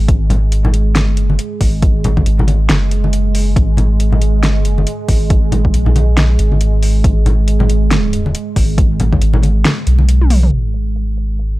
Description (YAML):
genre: deep dubstep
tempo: 138 BPM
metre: 4/4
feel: swing 59% on 16ths, half-time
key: G# minor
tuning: A4 = 442 Hz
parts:
  - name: deep dark ambient pad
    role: sustained chords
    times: 0.0-11.6 s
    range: G#3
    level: -22 LUFS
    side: right 5 dB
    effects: chorus, built-in reverb
  - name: soft dub sub bass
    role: bass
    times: 0.0-11.6 s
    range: F#1 to B1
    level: -13 LUFS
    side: equal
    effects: transformer saturation
  - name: deep house drum kit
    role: drums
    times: 0.1-11.5 s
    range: hi-hat, snare drum, toms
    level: -18 LUFS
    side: equal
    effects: overdrive, low-pass filter on hats, low-pass filter on snare, low-pass filter on toms
  - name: electronic kick drum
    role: drums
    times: 0.1-9.2 s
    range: none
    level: -14 LUFS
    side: equal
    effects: overdrive
  - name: congas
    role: percussion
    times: 0.3-10.1 s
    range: none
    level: -19 LUFS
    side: left 2 dB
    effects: none
room: little or no reverb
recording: dry, gritty hardware recording, cassette tape, low-pass filter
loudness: -11 LUFS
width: side -18 dB against mid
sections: 0.0-10.5 A section; 10.5-11.6 B section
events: drum fill 10.2-10.5; filter sweep on ambient pad 10.5-11.6; filter sweep 10.5-11.6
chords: none